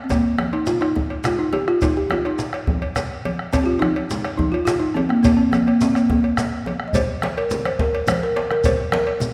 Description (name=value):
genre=west african traditional, West African drum ensemble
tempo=140 BPM (dotted quarters)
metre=12/8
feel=straight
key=Eb major pentatonic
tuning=A4 = 441 Hz
part: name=balafon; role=melody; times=0.0-9.3 s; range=Bb3 to Eb5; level=-22 LUFS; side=equal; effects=none
part: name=bombo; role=percussion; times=0.1-9.1 s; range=none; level=-28 LUFS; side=equal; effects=none
part: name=congas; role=percussion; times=0.1-9.3 s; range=none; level=-32 LUFS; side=equal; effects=none
part: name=cowbell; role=percussion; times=0.1-9.2 s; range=none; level=-33 LUFS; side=equal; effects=none
part: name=djembe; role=percussion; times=0.1-9.3 s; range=none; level=-32 LUFS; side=equal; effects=none
part: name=shekere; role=percussion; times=0.1-9.3 s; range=none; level=-35 LUFS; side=equal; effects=none
room=wet scoring stage reverb, RT60 1.7 s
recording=none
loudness=-20 LUFS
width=mono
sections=0.0-6.9 A section; 6.9-9.3 B section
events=none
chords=none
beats=| 0.10 0.53 0.96 1.39 | 1.82 2.25 2.68 3.11 | 3.53 3.96 4.39 4.82 | 5.24 5.67 6.10 6.52 | 6.95 7.37 7.80 8.22 | 8.64 9.07